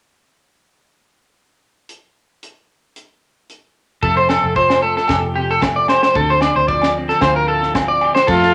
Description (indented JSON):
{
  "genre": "highlife guitar band",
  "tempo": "113 BPM",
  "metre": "4/4",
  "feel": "swing 53% on 16ths",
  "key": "F major",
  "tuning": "A4 = 444 Hz",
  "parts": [
    { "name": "tight funk drum kit", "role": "drums", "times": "1.9-8.5 s", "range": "crash cymbal, hi-hat, kick drum, snare drum", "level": "-25 LUFS", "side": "equal", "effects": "none" },
    { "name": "electric guitar at the edge of break-up", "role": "accompaniment", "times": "4.0-8.5 s", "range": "F2 to G4", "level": "-28 LUFS", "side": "equal", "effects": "none" },
    { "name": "electric guitar at the edge of break-up", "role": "arpeggios", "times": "4.0-8.5 s", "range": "G4 to D5", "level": "-17 LUFS", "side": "equal", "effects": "vibrato effect" },
    { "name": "fingered electric bass", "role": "bass", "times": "4.0-8.5 s", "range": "F1 to F2", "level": "-26 LUFS", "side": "equal", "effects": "none" },
    { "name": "agogo bells", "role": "percussion", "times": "4.3-8.2 s", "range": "none", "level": "-27 LUFS", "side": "equal", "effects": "none" },
    { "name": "clear trumpet", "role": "melody", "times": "8.3-8.5 s", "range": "F4", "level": "-16 LUFS", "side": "equal", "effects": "none" },
    { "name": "breathy alto saxophone", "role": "second line", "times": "8.3-8.5 s", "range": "A3", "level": "-28 LUFS", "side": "equal", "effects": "none" }
  ],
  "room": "wet studio ambience, RT60 0.5 s",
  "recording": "none",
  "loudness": "-16 LUFS",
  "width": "mono",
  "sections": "1.9-4.0 A section; 4.0-8.3 B section",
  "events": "none",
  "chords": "1.9 N.C.; 4.0 F; 6.2 Dm7"
}